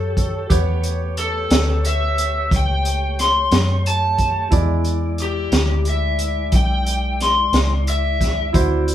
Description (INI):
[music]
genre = slow blues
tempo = 60 BPM (dotted quarters)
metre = 12/8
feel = straight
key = unclear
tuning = A4 = 440 Hz
[part]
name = overdriven slide guitar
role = melody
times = 0.0-8.5 s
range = G4 to C6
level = -21 LUFS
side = left 2 dB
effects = none
[part]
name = bright upright piano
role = accompaniment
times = 0.0-8.9 s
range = G#3 to D5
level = -27 LUFS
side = right 4 dB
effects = none
[part]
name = mellow tonewheel organ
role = sustained chords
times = 0.0-8.9 s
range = G#3 to D5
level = -29 LUFS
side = left 1 dB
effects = slow rotary speaker
[part]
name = vintage muted fingered electric bass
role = bass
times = 0.0-8.9 s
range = B1 to F#2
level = -20 LUFS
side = equal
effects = none
[part]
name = crunchy breakbeat drum kit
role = drums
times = 0.2-8.9 s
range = hi-hat, kick drum, snare drum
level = -20 LUFS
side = equal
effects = none
[sound]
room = wet studio reverb, RT60 0.6 s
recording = band playing live in one room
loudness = -16 LUFS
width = side -11 dB against mid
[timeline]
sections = 0.0-8.9 A section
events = none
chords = 0.0 A7; 4.5 E7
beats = | 0.50 1.51 2.51 3.52 | 4.52 5.53 6.53 7.54 | 8.54